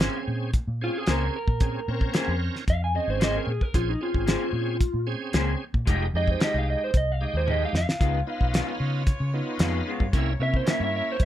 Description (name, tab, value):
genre	straight-eighth soul blues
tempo	112 BPM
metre	4/4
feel	straight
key	unclear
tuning	A4 = 438 Hz
part	bright tonewheel organ	accompaniment	0.0-11.2 s	Ab3 to Bb4	-33 LUFS	right 3 dB	slow rotary speaker, overdrive, chorus vibrato
part	electric guitar through a small old amp	stabs	0.0-10.8 s	C3 to C5	-30 LUFS	left 3 dB	lush chorus
part	vintage muted fingered electric bass	bass	0.0-11.2 s	F1 to Db3	-27 LUFS	equal	none
part	cloth-damped thuddy drum kit	drums	0.0-11.2 s	hi-hat, kick drum, snare drum, toms	-24 LUFS	equal	none
part	electric guitar through a small old amp	melody	0.8-11.2 s	Eb4 to Ab5	-29 LUFS	right 1 dB	none
part	clear horn section	sustained chords	8.0-11.2 s	E4 to Db5	-40 LUFS	left 1 dB	none
room	little or no reverb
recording	none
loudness	-23 LUFS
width	side -12 dB against mid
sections	0.0-11.2 A section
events	clean electric guitar solo 0.0-11.2; drum fill 7.5-8.0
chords	0.0 Bbm9; 5.9 Fm9; 8.0 Db7; 10.1 C7b9